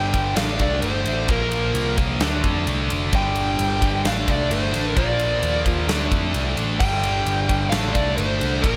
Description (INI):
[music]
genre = hard rock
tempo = 131 BPM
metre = 4/4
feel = straight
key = unclear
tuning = A4 = 440 Hz
[part]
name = dark smooth lead guitar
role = melody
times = 0.0-8.8 s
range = Bb4 to G5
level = -27 LUFS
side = equal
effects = overdrive, tape echo
[part]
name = cranked stack guitar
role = riff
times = 0.0-8.8 s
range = G2 to D4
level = -30 LUFS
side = equal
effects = overdrive
[part]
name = distorted electric guitar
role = riff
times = 0.0-8.8 s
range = G2 to D4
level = -32 LUFS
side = equal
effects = none
[part]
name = scooped high-gain guitar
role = riff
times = 0.0-8.8 s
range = G2 to D4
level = -30 LUFS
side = equal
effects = distortion
[part]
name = picked electric bass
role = bass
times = 0.0-8.8 s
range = F1 to F2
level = -28 LUFS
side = equal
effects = none
[part]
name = huge arena drum kit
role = drums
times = 0.1-8.7 s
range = crash cymbal, kick drum, ride cymbal, snare drum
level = -27 LUFS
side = equal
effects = none
[sound]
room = light reverb, small room ambience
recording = none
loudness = -21 LUFS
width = mono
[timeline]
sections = 0.0-8.8 A section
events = none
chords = 0.4 D5/A; 1.3 Bb5; 2.2 Dm; 3.1 G5; 4.1 D5/A; 5.0 Bb; 5.9 Dm; 6.8 G5; 7.7 D5/A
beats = 0.37 0.83 | 1.29 1.75 2.21 2.67 | 3.13 3.59 4.05 4.51 | 4.97 5.43 5.89 6.35 | 6.81 7.26 7.72 8.18 | 8.64